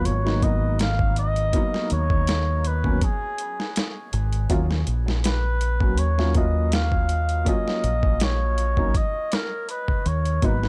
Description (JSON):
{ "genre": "trip hop", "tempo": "81 BPM", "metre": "4/4", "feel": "straight", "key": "Eb minor", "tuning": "A4 = 441 Hz", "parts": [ { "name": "trumpet with cup mute", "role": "melody", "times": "0.0-10.7 s", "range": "Ab4 to F5", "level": "-30 LUFS", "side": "equal", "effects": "tape echo" }, { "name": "felt-muted upright piano", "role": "accompaniment", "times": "0.0-10.6 s", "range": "Gb3 to Gb4", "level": "-31 LUFS", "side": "equal", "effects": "tremolo, tape echo" }, { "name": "deep dub fingered electric bass", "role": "bass", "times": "0.0-10.7 s", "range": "Ab1 to Eb2", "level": "-25 LUFS", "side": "equal", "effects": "none" }, { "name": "dusty soul sampler-style drum kit", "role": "drums", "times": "0.1-10.7 s", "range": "hi-hat, kick drum, snare drum", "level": "-27 LUFS", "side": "equal", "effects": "overdrive, small room ambience" } ], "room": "small room ambience", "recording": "echo-heavy mix", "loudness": "-23 LUFS", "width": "mono", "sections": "0.0-10.7 A section", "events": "none", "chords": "0.0 Abm7; 4.5 Ebm7" }